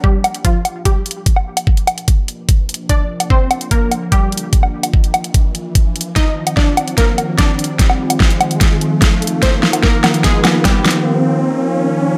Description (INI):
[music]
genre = heavy wobble dubstep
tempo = 147 BPM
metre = 4/4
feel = half-time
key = G minor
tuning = A4 = 440 Hz
[part]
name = unison pluck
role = melody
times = 0.0-11.1 s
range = F3 to Eb5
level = -23 LUFS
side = equal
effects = phaser, dub echo
[part]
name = lush unison pad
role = sustained chords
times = 0.0-12.2 s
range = Eb3 to G4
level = -23 LUFS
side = equal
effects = chorus, sidechain pumping
[part]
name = electronic kick drum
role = drums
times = 0.0-10.7 s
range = none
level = -16 LUFS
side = equal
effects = overdrive
[part]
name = riser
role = sound effects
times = 0.0-12.2 s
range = none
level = -26 LUFS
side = equal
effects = none
[part]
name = dubstep drum kit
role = drums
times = 0.2-11.0 s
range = hi-hat, snare drum, woodblock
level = -19 LUFS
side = equal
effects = overdrive
[sound]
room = light reverb, digital ambience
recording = none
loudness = -15 LUFS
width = mono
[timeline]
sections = 0.0-12.2 A section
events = build-up 0.0-12.2; riser 0.0-12.2; filter sweep on analog synth pad 0.0-12.2; filter sweep on synth pluck 0.0-12.2; drum fill 6.2-11.1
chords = 0.0 Gm7; 6.2 F7(no3)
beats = 0.04 0.45 0.85 | 1.26 1.67 2.08 2.49 | 2.90 3.30 3.71 4.12 | 4.53 4.94 5.34 5.75 | 6.16 6.57 6.98 7.38 | 7.79 8.20 8.61 9.02 | 9.43 9.83 10.24 10.65 | 11.06 11.47 11.87